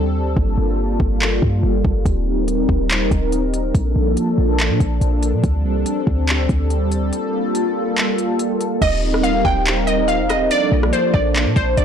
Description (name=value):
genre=hip hop, atmospheric cloud-rap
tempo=142 BPM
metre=4/4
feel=half-time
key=G minor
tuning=A4 = 441 Hz
part: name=sweeping resonant pad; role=sustained chords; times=0.0-11.8 s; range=F3 to Bb4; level=-20 LUFS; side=equal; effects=chorus, tremolo, sidechain pumping
part: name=clean 808-style bass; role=bass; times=0.0-11.8 s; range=Eb1 to Bb2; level=-20 LUFS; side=equal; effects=none
part: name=smooth R&B drum kit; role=drums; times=0.4-11.8 s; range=crash cymbal, handclaps, hi-hat, kick drum, rim click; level=-21 LUFS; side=equal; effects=overdrive
part: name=glassy wavetable pluck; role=melody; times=8.8-11.8 s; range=C5 to G5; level=-18 LUFS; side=right 1 dB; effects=chorus, ping-pong delay
room=light reverb, digital ambience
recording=blown-out, overdriven recording, overdrive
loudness=-16 LUFS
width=side -8 dB against mid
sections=0.0-8.8 A section; 8.8-11.8 B section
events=break 0.0-2.1; kick muted 7.1-8.8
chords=0.4 Gm9; 2.1 Eb6; 3.7 Bbmaj7; 5.4 D7sus4; 7.1 Gm9; 8.8 Eb6; 10.5 Bbmaj7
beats=| 0.37 0.79 1.21 1.63 | 2.06 2.48 2.90 3.32 | 3.75 4.17 4.59 5.01 | 5.44 5.86 6.28 6.70 | 7.13 7.55 7.97 8.39 | 8.82 9.24 9.66 10.08 | 10.51 10.93 11.35 11.77